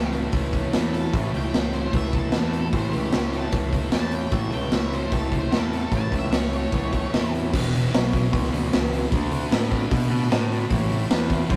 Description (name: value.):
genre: garage rock duo or trio.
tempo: 150 BPM.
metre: 4/4.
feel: straight.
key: A major.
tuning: A4 = 438 Hz.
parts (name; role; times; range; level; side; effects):
octave-fuzz lead guitar; melody; 0.0-7.3 s; G4 to A5; -37 LUFS; equal; distortion.
thick fuzz guitar; riff; 0.0-11.6 s; E2 to D4; -30 LUFS; equal; distortion.
growling picked electric bass; bass; 0.0-11.6 s; E1 to B2; -29 LUFS; equal; overdrive.
raw garage drum kit; drums; 0.1-11.6 s; crash cymbal, hi-hat, kick drum, snare drum; -26 LUFS; equal; none.
room: moderate small room reverb, RT60 0.5 s.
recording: rough rehearsal-room recording, tube saturation.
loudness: -23 LUFS.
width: mono.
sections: 0.0-7.5 A section; 7.5-11.6 B section.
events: none.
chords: 0.0 A; 7.5 E5; 9.1 D5; 10.7 A5.